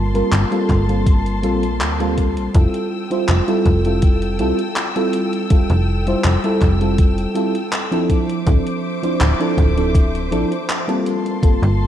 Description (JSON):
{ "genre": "vaporwave", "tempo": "81 BPM", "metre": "4/4", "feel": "straight", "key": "F major", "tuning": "A4 = 441 Hz", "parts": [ { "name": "mellow FM electric piano", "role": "accompaniment", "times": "0.0-11.9 s", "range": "F3 to C5", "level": "-19 LUFS", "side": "right 1 dB", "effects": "lush chorus, tape echo" }, { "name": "warm studio string section", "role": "sustained chords", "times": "0.0-11.9 s", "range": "Bb3 to E6", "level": "-28 LUFS", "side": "left 2 dB", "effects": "none" }, { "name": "slap-like FM bass", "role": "bass", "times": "0.0-11.9 s", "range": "D1 to D2", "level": "-18 LUFS", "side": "equal", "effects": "none" }, { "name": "gated 80s digital drum machine", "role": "drums", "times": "0.1-11.8 s", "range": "handclaps, hi-hat", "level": "-26 LUFS", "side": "equal", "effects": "gated reverb, overdrive" }, { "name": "electronic kick drum", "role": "drums", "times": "0.7-11.6 s", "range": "none", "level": "-15 LUFS", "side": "equal", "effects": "overdrive" } ], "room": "moderate plate reverb, RT60 2.7 s", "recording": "dreamy mix soaked in reverb", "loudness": "-15 LUFS", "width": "side -11 dB against mid", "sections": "0.0-11.9 A section", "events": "none", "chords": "0.0 Gm11; 2.5 Fmaj9; 8.1 Dm9; 11.1 Gm11", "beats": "0.32 1.06 1.80 | 2.54 3.28 4.03 4.77 | 5.51 6.25 6.99 7.73 | 8.47 9.21 9.95 10.69 | 11.43" }